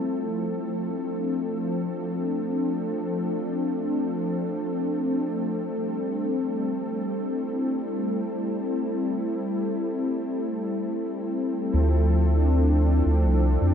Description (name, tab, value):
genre	ambient dub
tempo	free time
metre	none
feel	none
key	D minor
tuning	A4 = 445 Hz
part	warm analog pad	sustained chords	0.0-13.7 s	F3 to A4	-25 LUFS	left 1 dB	chorus
part	round analog bass	bass	11.7-13.7 s	C2 to F2	-20 LUFS	equal	none
room	wet cathedral reverb, RT60 5.7 s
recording	dreamy mix soaked in reverb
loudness	-24 LUFS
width	side -8 dB against mid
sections	0.0-11.7 A section; 11.7-13.7 B section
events	none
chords	0.0 Dm7; 5.7 Am7; 11.7 Dm7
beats	free time